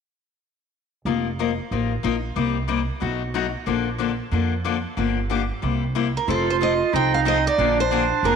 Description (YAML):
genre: acoustic string swing (jazz manouche)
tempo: 184 BPM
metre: 4/4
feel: swing 60% on 8ths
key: F mixolydian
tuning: A4 = 441 Hz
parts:
  - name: picked acoustic archtop guitar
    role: accompaniment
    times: 1.1-8.4 s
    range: B2 to Bb4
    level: -24 LUFS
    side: left 9 dB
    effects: none
  - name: upright bass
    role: bass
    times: 1.1-8.4 s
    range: F1 to F2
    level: -26 LUFS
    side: right 2 dB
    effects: none
  - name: picked steel-string acoustic guitar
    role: melody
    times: 6.2-8.4 s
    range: A4 to G5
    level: -22 LUFS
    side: right 2 dB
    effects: none
  - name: breathy clarinet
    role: second line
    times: 6.3-8.4 s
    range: D4 to F4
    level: -22 LUFS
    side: right 12 dB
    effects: slapback echo
room: moderate plate reverb, RT60 2.6 s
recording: 1960s-style stereo with parts hard left and right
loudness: -20 LUFS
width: side -6 dB against mid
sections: 1.1-6.3 A section; 6.3-8.4 B section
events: none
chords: 1.1 F7sus4; 2.4 Cm7; 3.0 B7; 3.7 Bbmaj7; 5.0 Gm7; 5.6 C7; 6.3 F7; 7.6 Bb7